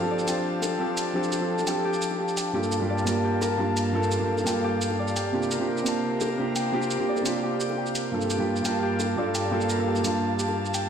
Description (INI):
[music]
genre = liquid drum and bass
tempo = 172 BPM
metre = 4/4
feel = straight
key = G minor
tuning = A4 = 442 Hz
[part]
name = warm grand piano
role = accompaniment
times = 0.0-10.9 s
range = G2 to A5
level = -26 LUFS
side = right 1 dB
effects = dub echo
[part]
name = airy breathy pad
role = sustained chords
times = 0.0-10.9 s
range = Bb3 to A5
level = -30 LUFS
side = right 1 dB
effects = chorus
[part]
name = Celtic harp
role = arpeggios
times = 0.0-10.9 s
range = G4 to G5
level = -32 LUFS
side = left 3 dB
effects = low-pass filter, dub echo
[part]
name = electronic shaker and hi-hat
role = drums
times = 0.2-10.8 s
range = none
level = -34 LUFS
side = right 2 dB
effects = none
[part]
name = bongos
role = percussion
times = 0.6-10.6 s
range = none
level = -37 LUFS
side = left 4 dB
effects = none
[sound]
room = moderate lush hall reverb, RT60 2.6 s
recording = played on a big sound system in a bare room, stone room reverb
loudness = -23 LUFS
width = side -8 dB against mid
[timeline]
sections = 0.0-10.9 A section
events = none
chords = 0.0 F69; 2.5 Gm9; 5.2 C7sus4; 8.1 Gm9